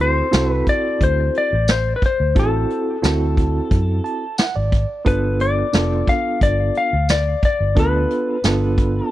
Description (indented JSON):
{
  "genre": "straight-eighth soul blues",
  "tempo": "89 BPM",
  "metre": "4/4",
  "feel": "straight",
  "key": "unclear",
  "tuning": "A4 = 439 Hz",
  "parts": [
    { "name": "clean lap steel guitar", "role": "melody", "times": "0.0-9.1 s", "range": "A4 to F5", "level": "-21 LUFS", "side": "left 4 dB", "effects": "none" },
    { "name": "bright reed electric piano", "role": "accompaniment", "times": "0.0-9.1 s", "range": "B3 to A5", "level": "-22 LUFS", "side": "right 4 dB", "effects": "fast tremolo" },
    { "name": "vintage muted fingered electric bass", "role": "bass", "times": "0.0-9.0 s", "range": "F1 to F#2", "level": "-20 LUFS", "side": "equal", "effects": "none" },
    { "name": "vintage brush drum kit", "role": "drums", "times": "0.3-8.9 s", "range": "hi-hat, kick drum, snare drum, tambourine", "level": "-18 LUFS", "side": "equal", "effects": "none" }
  ],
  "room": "small room ambience",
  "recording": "dry, close 1970s-style studio recording",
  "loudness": "-16 LUFS",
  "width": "side -14 dB against mid",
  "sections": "0.0-9.1 A section",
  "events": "reed electric piano fill 3.7-5.1",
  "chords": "0.0 D9; 5.1 G9"
}